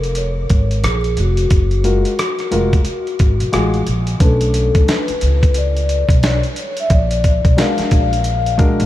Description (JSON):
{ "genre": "hip hop, jazz-hop", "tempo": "89 BPM", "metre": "4/4", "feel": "swing 62% on 16ths", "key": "unclear", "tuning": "A4 = 440 Hz", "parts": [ { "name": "vibraphone with soft mallets", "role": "melody", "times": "0.0-8.6 s", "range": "F#4 to E#5", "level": "-21 LUFS", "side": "left 4 dB", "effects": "ping-pong delay" }, { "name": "upright bass", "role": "bass", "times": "0.0-8.9 s", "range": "E#1 to C#2", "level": "-17 LUFS", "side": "equal", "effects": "none" }, { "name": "dusty soul sampler-style drum kit", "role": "drums", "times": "0.0-8.9 s", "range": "hi-hat, kick drum, rim click, snare drum", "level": "-17 LUFS", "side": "equal", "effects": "none" }, { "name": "dark concert grand piano", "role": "accompaniment", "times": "1.8-8.9 s", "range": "G#3 to B4", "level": "-22 LUFS", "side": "left 1 dB", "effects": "none" } ], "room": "light reverb, small room ambience", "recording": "vinyl crackle", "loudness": "-13 LUFS", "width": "side -14 dB against mid", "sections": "0.0-4.2 A section; 4.2-8.9 B section", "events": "none", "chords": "0.0 F#maj9; 4.2 Bm9; 6.9 A#7b13", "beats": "0.16 0.83 | 1.51 2.18 2.86 3.53 | 4.20 4.88 5.55 6.23 | 6.90 7.58 8.25" }